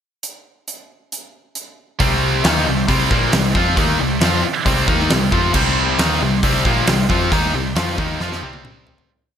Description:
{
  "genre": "hard rock",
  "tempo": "135 BPM",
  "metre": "4/4",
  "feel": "straight",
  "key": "unclear",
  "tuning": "A4 = 441 Hz",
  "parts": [
    { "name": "huge arena drum kit", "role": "drums", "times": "0.2-9.1 s", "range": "crash cymbal, hi-hat, kick drum, snare drum, toms", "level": "-20 LUFS", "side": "equal", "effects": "none" },
    { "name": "overdriven tonewheel organ", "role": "sustained chords", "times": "2.0-9.1 s", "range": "G4 to C6", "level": "-31 LUFS", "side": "equal", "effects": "none" },
    { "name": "distorted electric guitar", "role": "riff", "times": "2.0-9.1 s", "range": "Bb2 to F4", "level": "-21 LUFS", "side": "left 9 dB", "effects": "overdrive" },
    { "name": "scooped high-gain guitar", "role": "riff", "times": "2.0-9.1 s", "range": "Bb2 to F4", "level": "-20 LUFS", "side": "right 9 dB", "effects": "distortion" },
    { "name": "hollow-body short-scale picked electric bass", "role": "bass", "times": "2.0-9.1 s", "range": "Bb1 to F2", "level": "-22 LUFS", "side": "equal", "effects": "none" }
  ],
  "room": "moderate plate reverb, RT60 2.2 s",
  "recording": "bright 1980s-style digital production",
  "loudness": "-14 LUFS",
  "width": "side -8 dB against mid",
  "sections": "0.2-2.0 pickup bar; 2.0-9.1 riff",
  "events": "fade-out 7.3-9.1; drum fill 8.2-9.1",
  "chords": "0.2 N.C.; 2.0 C"
}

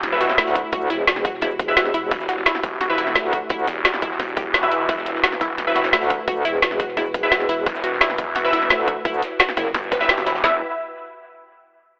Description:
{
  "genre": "dark technical drum and bass",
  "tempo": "173 BPM",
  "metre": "4/4",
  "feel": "straight",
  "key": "E minor",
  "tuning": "A4 = 440 Hz",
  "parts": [
    { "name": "dark analog pad", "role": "sustained chords", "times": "0.0-10.6 s", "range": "E4 to B4", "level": "-33 LUFS", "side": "equal", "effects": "chorus, sidechain pumping" },
    { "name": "orchestra-hit-like synth stab", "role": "stabs", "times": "0.0-10.6 s", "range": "E4 to E5", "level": "-27 LUFS", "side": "equal", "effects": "built-in reverb, phaser, dub echo" },
    { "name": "snarling distorted saw bass", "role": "bass", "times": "0.0-10.6 s", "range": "E1 to G1", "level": "-28 LUFS", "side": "equal", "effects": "distortion, overdrive" },
    { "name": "crunchy breakbeat drum kit", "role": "drums", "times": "0.0-10.4 s", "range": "hi-hat, snare drum", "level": "-35 LUFS", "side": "equal", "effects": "none" },
    { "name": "drum and bass drum kit", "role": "drums", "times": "0.0-10.3 s", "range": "hi-hat, shaker, snare drum", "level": "-22 LUFS", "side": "equal", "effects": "none" },
    { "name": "unison pluck", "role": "arpeggios", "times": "0.2-10.6 s", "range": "E4 to B4", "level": "-29 LUFS", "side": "equal", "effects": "sidechain pumping, dub echo" },
    { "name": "metallic wobble bass", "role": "bass", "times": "0.4-3.7, 5.9-9.7 s", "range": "E1 to D2", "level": "-26 LUFS", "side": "equal", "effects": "chorus" },
    { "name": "drum and bass drum kit", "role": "drums", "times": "0.6-10.5 s", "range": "kick drum, snare drum, toms", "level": "-27 LUFS", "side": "equal", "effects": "none" }
  ],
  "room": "moderate lush hall reverb, RT60 1.9 s, digital ambience",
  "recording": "telephone sound",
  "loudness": "-20 LUFS",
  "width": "mono",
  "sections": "0.0-10.4 A section; 10.4-11.8 B section",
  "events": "drop 0.0-10.4",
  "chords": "0.0 Emadd9"
}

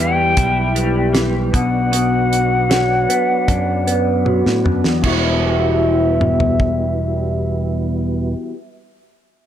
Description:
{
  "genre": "psychedelic rock",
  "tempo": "77 BPM",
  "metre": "4/4",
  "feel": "straight",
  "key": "E minor",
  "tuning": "A4 = 439 Hz",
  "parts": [
    { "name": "breathy bright jazz flute", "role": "melody", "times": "0.0-8.3 s", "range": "E5 to G5", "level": "-20 LUFS", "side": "left 2 dB", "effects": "low-pass filter, analog delay" },
    { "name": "mellow tonewheel organ", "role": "sustained chords", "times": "0.0-8.3 s", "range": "F#3 to D5", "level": "-26 LUFS", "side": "right 6 dB", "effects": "chorus vibrato, wide subtle chorus, low-pass filter" },
    { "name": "electric guitar through a small old amp", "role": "riff", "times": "0.0-8.6 s", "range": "E2 to F#4", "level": "-19 LUFS", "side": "left 1 dB", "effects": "flanger, low-pass filter" },
    { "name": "picked electric bass", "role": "bass", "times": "0.0-8.3 s", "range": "E1 to A2", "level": "-20 LUFS", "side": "equal", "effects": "none" },
    { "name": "damped 70s drum kit", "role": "drums", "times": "0.4-6.8 s", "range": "crash cymbal, hi-hat, kick drum, snare drum, toms", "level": "-20 LUFS", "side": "right 1 dB", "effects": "none" }
  ],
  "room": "small room ambience",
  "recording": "none",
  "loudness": "-14 LUFS",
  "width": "side -10 dB against mid",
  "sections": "0.0-5.0 A section; 5.0-8.2 B section",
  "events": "filter sweep 0.0-5.0; drum fill 4.3-5.0",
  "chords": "0.0 Em; 1.5 Bm; 5.0 Emadd9"
}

